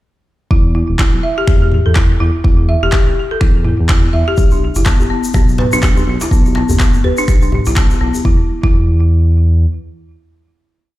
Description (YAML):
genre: afro house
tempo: 124 BPM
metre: 4/4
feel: swing 60% on 16ths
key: E minor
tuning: A4 = 441 Hz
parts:
  - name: folk marimba with medium hard mallets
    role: arpeggios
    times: 0.5-8.8 s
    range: B3 to E5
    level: -18 LUFS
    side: left 1 dB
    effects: sidechain pumping, digital delay
  - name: smooth synth bass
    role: bass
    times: 0.5-9.7 s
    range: E1 to E2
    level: -14 LUFS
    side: equal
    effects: sidechain pumping
  - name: electronic kick drum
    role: drums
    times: 0.5-8.8 s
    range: none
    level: -13 LUFS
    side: equal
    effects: overdrive
  - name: afro-pop drum kit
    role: drums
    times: 1.0-7.9 s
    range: finger snaps, handclaps, toms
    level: -22 LUFS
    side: equal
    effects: overdrive
  - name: egg shaker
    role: percussion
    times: 4.4-8.2 s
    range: none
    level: -28 LUFS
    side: left 2 dB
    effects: none
  - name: djembe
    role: percussion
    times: 4.5-8.2 s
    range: none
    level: -22 LUFS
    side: left 2 dB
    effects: none
room: little or no reverb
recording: played on a big sound system in a bare room, stone room reverb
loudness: -10 LUFS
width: side -16 dB against mid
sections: 0.5-8.2 drop; 8.2-11.0 final note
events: drop 0.5-8.2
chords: none